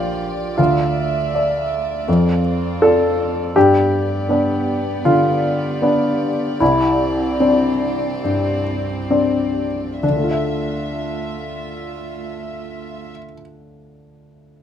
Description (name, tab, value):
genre	neoclassical piano and strings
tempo	64-82 BPM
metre	4/4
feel	rubato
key	D minor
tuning	A4 = 440 Hz
part	warm baby grand piano	accompaniment	0.0-14.6 s	Bb1 to E5	-17 LUFS	left 1 dB	none
part	warm chamber string section	sustained chords	0.0-13.1 s	F3 to E5	-26 LUFS	right 4 dB	none
room	light reverb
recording	minimal, uncompressed stereo recording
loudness	-16 LUFS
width	side -9 dB against mid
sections	0.0-10.0 A section; 10.0-13.7 B section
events	slowing down 2.1-10.0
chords	0.0 Bb; 0.6 Dmadd9; 2.1 F6; 3.6 G; 6.6 Cadd9; 10.0 Dmadd9